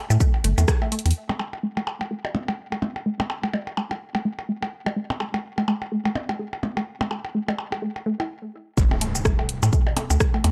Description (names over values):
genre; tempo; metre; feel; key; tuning
minimal techno; 126 BPM; 4/4; swing 58% on 16ths; unclear; A4 = 440 Hz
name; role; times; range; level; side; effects
resonant blip pluck; riff; 0.1-10.5 s; A3 to E4; -30 LUFS; equal; chorus, phaser, sidechain pumping, analog delay
rubbery square bass; bass; 0.1-1.1, 8.8-10.5 s; G1 to A2; -21 LUFS; equal; sidechain pumping
house drum kit; drums; 0.1-1.2, 8.8-10.5 s; hi-hat, rim click, shaker; -29 LUFS; equal; none
percussion blips; percussion; 0.1-10.5 s; none; -32 LUFS; equal; tape echo
electronic kick drum; drums; 0.2-0.8, 8.8-10.3 s; none; -23 LUFS; equal; none
impact; sound effects; 8.8-10.5 s; none; -33 LUFS; equal; none
room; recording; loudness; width
moderate studio reverb, RT60 0.6 s; dry, gritty hardware recording; -25 LUFS; mono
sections
0.0-1.2 A section; 1.2-8.8 B section; 8.8-10.5 A section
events
drop 0.0-1.2, 8.8-10.5; band accent 0.7; drum fill 0.9; filter sweep on synth arpeggio sound 1.2-8.8; stop 8.3-8.8; impact 8.8-10.5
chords
0.0 A5; 8.8 N.C.